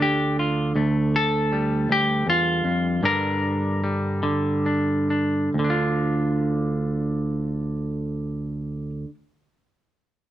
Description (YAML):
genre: folk, solo fingerstyle acoustic guitar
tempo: 44-54 BPM (dotted quarters)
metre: 6/8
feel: rubato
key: D minor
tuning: A4 = 440 Hz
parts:
  - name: semi-hollow electric guitar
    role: solo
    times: 0.0-9.1 s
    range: D2 to Bb4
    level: -21 LUFS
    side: equal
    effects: none
room: light reverb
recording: minimal, uncompressed stereo recording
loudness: -21 LUFS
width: side -12 dB against mid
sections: 0.8-5.5 A section; 5.5-8.2 B section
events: slowing down 0.8-5.5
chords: 0.0 Dm; 3.0 Gm; 5.5 N.C.